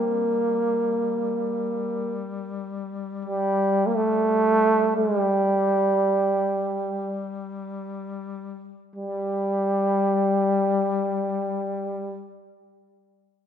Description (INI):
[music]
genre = caucasian folk, Caucasian lament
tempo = free time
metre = none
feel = none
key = G minor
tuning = A4 = 440 Hz
[part]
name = warm trombone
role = melody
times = 0.0-12.3 s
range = G3 to Bb3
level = -22 LUFS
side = right 1 dB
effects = none
[part]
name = mellow duduk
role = drone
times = 0.0-12.3 s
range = G3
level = -33 LUFS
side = left 7 dB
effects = none
[sound]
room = moderate concert hall reverb, RT60 2.1 s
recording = minimal, uncompressed stereo recording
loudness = -22 LUFS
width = side -8 dB against mid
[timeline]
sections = 0.0-9.0 A section; 9.0-12.5 B section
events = slowing down 1.9-9.0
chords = none